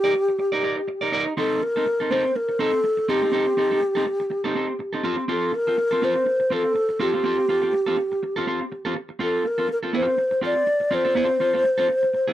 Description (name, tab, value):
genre	disco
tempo	122 BPM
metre	4/4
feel	swing 56% on 16ths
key	unclear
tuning	A4 = 440 Hz
part	mellow hollow alto flute	melody	0.0-12.3 s	G4 to D5	-21 LUFS	equal	tape echo
part	clean electric guitar	accompaniment	0.0-12.3 s	C4 to D5	-25 LUFS	right 1 dB	none
room	light reverb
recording	dry, close 1970s-style studio recording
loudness	-20 LUFS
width	side -13 dB against mid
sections	0.0-12.3 A section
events	none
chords	0.0 Ebmaj7; 1.4 Cm6; 5.0 Dm7 (rootless)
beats	0.39 0.88 | 1.37 1.86 2.35 2.84 | 3.33 3.82 4.31 4.80 | 5.29 5.78 6.27 6.76 | 7.25 7.74 8.23 8.72 | 9.21 9.70 10.19 10.68 | 11.17 11.65 12.14